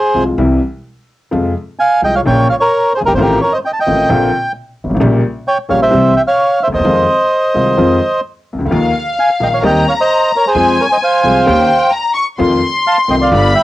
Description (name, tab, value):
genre	tango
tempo	130 BPM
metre	4/4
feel	rubato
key	F minor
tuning	A4 = 441 Hz
part	bandoneon	melody	0.0-13.6 s	G4 to A5	-12 LUFS	right 1 dB	cassette tape
part	clear upright piano	accompaniment	0.1-13.5 s	Gb1 to Ab4	-15 LUFS	left 2 dB	cassette tape
part	upright bass	bass	0.1-13.5 s	Gb1 to F2	-18 LUFS	right 1 dB	tube saturation
part	clear studio violin section	second line	8.7-13.6 s	F5 to Db6	-15 LUFS	left 3 dB	cassette tape
room	light reverb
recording	home recording on cassette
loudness	-10 LUFS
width	side -16 dB against mid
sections	0.0-13.6 A section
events	none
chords	0.4 C; 1.3 Fm; 2.3 Bbm; 3.2 F7/A; 4.1 Bbadd9; 5.0 Gdim/Bb; 5.9 C; 6.8 Fm7; 8.7 Ebsus2; 9.6 Cm/Eb; 10.6 Fm; 11.5 Eb7; 12.4 F7